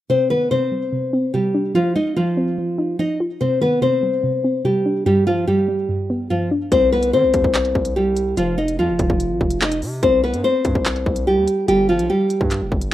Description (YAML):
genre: hip hop, drill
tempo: 145 BPM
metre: 4/4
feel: half-time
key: C harmonic minor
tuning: A4 = 438 Hz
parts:
  - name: nylon-string guitar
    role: melody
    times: 0.1-12.9 s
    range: F3 to Eb5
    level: -18 LUFS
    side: left 1 dB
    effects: none
  - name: soft round pluck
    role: accompaniment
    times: 0.1-6.7 s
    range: G2 to F4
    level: -23 LUFS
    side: equal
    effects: chorus
  - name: distorted 808-style bass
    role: bass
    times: 6.7-12.9 s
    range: F1 to Eb3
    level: -25 LUFS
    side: equal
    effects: distortion
  - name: drill drum kit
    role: drums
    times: 6.7-12.9 s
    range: handclaps, hi-hat, kick drum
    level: -22 LUFS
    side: equal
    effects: none
room: digital ambience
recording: rough home demo mix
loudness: -16 LUFS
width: side -13 dB against mid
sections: 0.1-6.7 A section; 6.7-12.9 B section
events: none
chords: 0.1 Cmadd9; 1.8 Fm7; 3.4 Cmadd9; 5.1 G7; 6.7 Cm; 8.4 F7(no3); 10.0 C5; 11.7 G7(no3)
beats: | 0.10 0.51 0.92 1.34 | 1.75 2.17 2.58 2.99 | 3.41 3.82 4.24 4.65 | 5.06 5.48 5.89 6.30 | 6.72 7.13 7.54 7.96 | 8.37 8.79 9.20 9.61 | 10.03 10.44 10.86 11.27 | 11.68 12.10 12.51 12.92